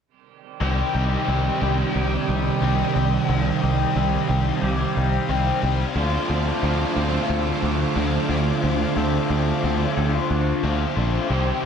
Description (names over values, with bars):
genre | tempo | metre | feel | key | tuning
rock | 90 BPM | 4/4 | straight | C dorian | A4 = 440 Hz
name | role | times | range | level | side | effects
string machine, violas | sustained chords | 0.6-11.7 s | C5 to Eb6 | -32 LUFS | right 2 dB | ensemble chorus
twangy electric guitar | arpeggios | 0.6-11.7 s | F3 to A4 | -33 LUFS | right 3 dB | lush chorus, slapback echo
biting overdriven guitar | riff | 0.6-11.7 s | C3 to G4 | -25 LUFS | left 9 dB | lush chorus
overdriven electric guitar | riff | 0.6-11.7 s | C3 to G4 | -26 LUFS | right 11 dB | reverse reverb
picked electric bass | bass | 0.6-11.5 s | Bb1 to D2 | -23 LUFS | equal | none
room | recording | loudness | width
light reverb, digital ambience | dark, warm production | -19 LUFS | side -7 dB against mid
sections
0.6-11.7 A section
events
none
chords
0.6 Cm; 6.0 Dm7